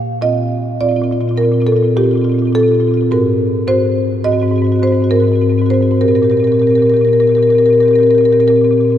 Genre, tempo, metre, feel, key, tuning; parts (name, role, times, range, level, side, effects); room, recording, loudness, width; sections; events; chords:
classical, contemporary piece for solo marimba; 96-108 BPM; 5/4; rubato; A4 = 439 Hz
marimba with soft mallets; solo; 0.0-9.0 s; Ab2 to F5; -10 LUFS; left 1 dB
wet cathedral reverb, RT60 4.8 s; -10 LUFS; side -10 dB against mid
0.0-9.0 A section
0.2 Cm11/Bb; 3.1 Ab9; 6.0 Bbsus2